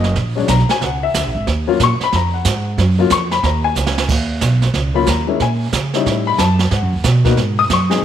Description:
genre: jazz, small-group swing and bop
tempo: 183 BPM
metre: 4/4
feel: swing 63% on 8ths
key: Eb minor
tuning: A4 = 439 Hz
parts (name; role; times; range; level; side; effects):
- dark upright piano; accompaniment; 0.0-8.0 s; F#3 to Eb6; -18 LUFS; left 8 dB; none
- upright bass; bass; 0.0-8.0 s; Gb1 to Db3; -17 LUFS; right 2 dB; none
- jazz brush drum kit; drums; 0.0-8.0 s; brushed snare drum, crash cymbal, hi-hat, kick drum, snare drum; -20 LUFS; right 6 dB; none
room: light reverb, small room reverb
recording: 1960s-style stereo with parts hard left and right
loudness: -14 LUFS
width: side -10 dB against mid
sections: 0.0-4.1 A section; 4.1-8.0 A section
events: drum fill 3.8-4.1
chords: 0.2 Bb7alt; 1.5 Ebm9; 4.1 Eb7(no3); 5.4 Bbdim; 6.1 A7#11; 6.7 Abm7

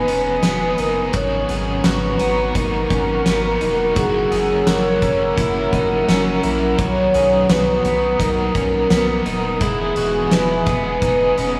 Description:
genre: dream pop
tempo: 85 BPM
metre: 4/4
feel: straight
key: B major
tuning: A4 = 441 Hz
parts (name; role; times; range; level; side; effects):
- soft octave-layered synth lead; melody; 0.0-11.6 s; G#4 to C#5; -22 LUFS; equal; chorus, phaser, diffuse ambient delay, shimmer reverb
- overdriven electric guitar; accompaniment; 0.0-11.6 s; G#2 to A#4; -28 LUFS; equal; tremolo, subtle chorus, shimmer reverb
- hollow soft pad; sustained chords; 0.0-11.6 s; B3 to E6; -28 LUFS; equal; chorus, shimmer reverb
- electric guitar at the edge of break-up; arpeggios; 0.0-11.6 s; B3 to G#4; -29 LUFS; equal; subtle chorus, diffuse ambient delay, shimmer reverb
- warm sub bass; bass; 0.0-11.6 s; D#1 to B1; -28 LUFS; equal; none
- oversized low-tuned drum kit; drums; 0.1-11.5 s; hi-hat, kick drum, snare drum; -25 LUFS; equal; none
room: wet lush hall reverb, RT60 1.9 s, small room ambience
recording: dreamy mix soaked in reverb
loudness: -18 LUFS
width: mono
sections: 0.0-11.6 A section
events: none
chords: 0.0 Emaj7; 1.1 G#m11; 4.0 F#7; 6.8 Bmaj7; 9.6 Emaj7

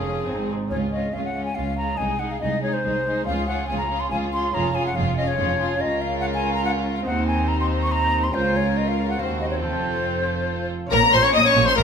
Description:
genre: classical, baroque-style concerto movement with solo episodes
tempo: 141 BPM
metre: 3/4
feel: straight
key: Db major, Bb minor from 5.8 s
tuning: A4 = 440 Hz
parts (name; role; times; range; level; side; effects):
- hollow concert flute; melody; 0.0-11.8 s; Ab4 to Db6; -25 LUFS; left 1 dB; none
- rich chamber violin section; melody; 0.0-11.8 s; Eb4 to Eb6; -27 LUFS; left 4 dB; none
- warm studio violin section; second line; 0.0-11.8 s; Db4 to Eb5; -28 LUFS; equal; none
- dark studio viola section; accompaniment; 0.0-11.8 s; Ab3 to Db4; -31 LUFS; equal; none
- lute; accompaniment; 0.0-11.8 s; Eb2 to C5; -36 LUFS; right 2 dB; none
- rich chamber cello section; bass; 0.0-11.8 s; C2 to Bb2; -29 LUFS; right 3 dB; none
- rich studio double bass section; bass; 0.0-11.8 s; F1 to Eb2; -28 LUFS; right 2 dB; none
room: wet recital hall reverb, RT60 1.5 s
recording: minimal, uncompressed stereo recording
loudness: -20 LUFS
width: side -6 dB against mid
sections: 0.7-10.9 A section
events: none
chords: 0.3 Ab; 0.7 Db; 2.0 Ab/C; 3.3 Db; 4.5 Db/F; 5.8 Bbm/Db; 7.1 Eb5; 8.3 Bbm/Db; 9.2 Cdim/Eb; 9.6 F; 10.9 Bbm

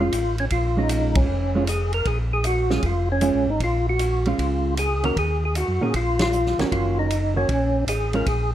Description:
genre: soul jazz organ trio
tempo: 155 BPM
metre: 4/4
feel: swing 67% on 8ths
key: unclear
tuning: A4 = 437 Hz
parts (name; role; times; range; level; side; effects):
- percussive tonewheel organ; melody; 0.0-8.5 s; Db4 to Bb4; -24 LUFS; equal; slow rotary speaker, chorus vibrato, plate reverb
- hollow-body jazz guitar; accompaniment; 0.0-8.3 s; Eb3 to Gb4; -26 LUFS; right 4 dB; none
- mellow tonewheel organ; bass; 0.0-8.5 s; F1 to Bb2; -24 LUFS; equal; chorus vibrato, slow rotary speaker
- vintage drum kit; drums; 0.1-8.4 s; hi-hat, kick drum, ride cymbal, snare drum; -29 LUFS; equal; none
room: light reverb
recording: none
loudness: -20 LUFS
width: side -12 dB against mid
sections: 0.0-8.5 A section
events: band accent 1.1, 6.1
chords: 0.0 Bbm7; 5.2 Ebm7

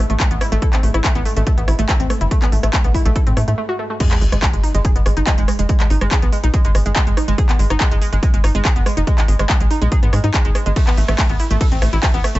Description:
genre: driving peak-time techno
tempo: 142 BPM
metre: 4/4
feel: straight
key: G# phrygian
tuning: A4 = 438 Hz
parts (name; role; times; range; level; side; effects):
- tight sequencer bass; bass; 0.0-12.4 s; F#1 to A2; -18 LUFS; equal; sidechain pumping
- metallic inharmonic drone; drone; 0.0-3.6 s; G#2 to G#3; -34 LUFS; left 1 dB; none
- analog pluck; riff; 0.1-12.4 s; G#3 to A4; -23 LUFS; right 1 dB; chorus, overdrive, sidechain pumping, ping-pong delay
- techno drum kit; drums; 0.1-12.4 s; crash cymbal, handclaps, hi-hat, ride cymbal, rim click; -23 LUFS; equal; overdrive, small room reverb, sidechain pumping on hats, sidechain pumping on cymbals
- electronic kick drum; drums; 0.2-12.1 s; none; -17 LUFS; equal; overdrive, small room reverb
- sub drop; sound effects; 4.0-5.7 s; none; -25 LUFS; equal; none
room: digital ambience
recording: nothing above 7.9 kHz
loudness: -14 LUFS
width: side -17 dB against mid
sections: 0.0-4.0 A section; 4.0-12.4 B section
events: break 3.6-4.0; drop 4.0-12.4; impact 4.0-5.7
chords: 0.0 N.C.; 4.0 G#m; 10.8 N.C.

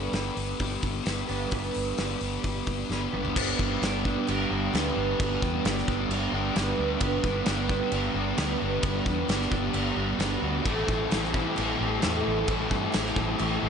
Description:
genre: rock, shoegaze and dream pop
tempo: 132 BPM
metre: 4/4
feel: straight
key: G major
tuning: A4 = 437 Hz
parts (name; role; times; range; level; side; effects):
- picked twelve-string acoustic guitar; arpeggios; 0.0-13.7 s; G4 to B4; -34 LUFS; right 4 dB; lush chorus, analog delay
- electric guitar through a small old amp; riff; 0.0-13.7 s; G2 to G4; -32 LUFS; right 14 dB; reverse reverb
- overdriven electric guitar; riff; 0.0-13.7 s; G2 to B4; -31 LUFS; left 11 dB; lush chorus
- vintage muted fingered electric bass; bass; 0.0-13.7 s; G1 to G2; -32 LUFS; equal; none
- loose indie drum kit; drums; 0.1-13.5 s; crash cymbal, hi-hat, kick drum, snare drum, toms; -30 LUFS; equal; none
- distorted electric guitar; riff; 10.7-13.7 s; A2 to A3; -31 LUFS; left 1 dB; distortion
room: light reverb, small room reverb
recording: nothing above 10.3 kHz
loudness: -25 LUFS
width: side -7 dB against mid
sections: 0.0-3.4 A section; 3.4-13.7 B section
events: drum fill 2.9-3.4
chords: 0.0 G; 10.7 Am7

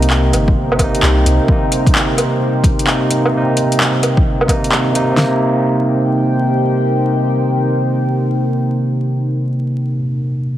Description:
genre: future garage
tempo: 130 BPM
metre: 4/4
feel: swing 65% on 16ths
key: C minor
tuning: A4 = 438 Hz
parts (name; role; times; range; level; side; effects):
- barky tine electric piano; accompaniment; 0.0-10.6 s; C3 to Eb4; -16 LUFS; right 1 dB; vintage 12-bit sampler grit, sidechain pumping, analog delay
- deep dark ambient pad; sustained chords; 0.0-9.6 s; Eb4 to G5; -20 LUFS; left 1 dB; chorus, built-in reverb, sidechain pumping
- soft 808-style bass; bass; 0.0-1.4 s; G1 to C2; -15 LUFS; equal; sidechain pumping
- deep house drum kit; drums; 0.0-5.1 s; handclaps, hi-hat, woodblock; -18 LUFS; equal; overdrive
- deep house drum kit; drums; 0.5-5.3 s; kick drum, snare drum; -15 LUFS; equal; overdrive
room: moderate lush hall reverb, RT60 2.2 s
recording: heavily compressed radio sound, vinyl crackle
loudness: -13 LUFS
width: side -12 dB against mid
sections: 0.0-5.2 A section; 5.2-8.9 B section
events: none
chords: 0.0 Cm7

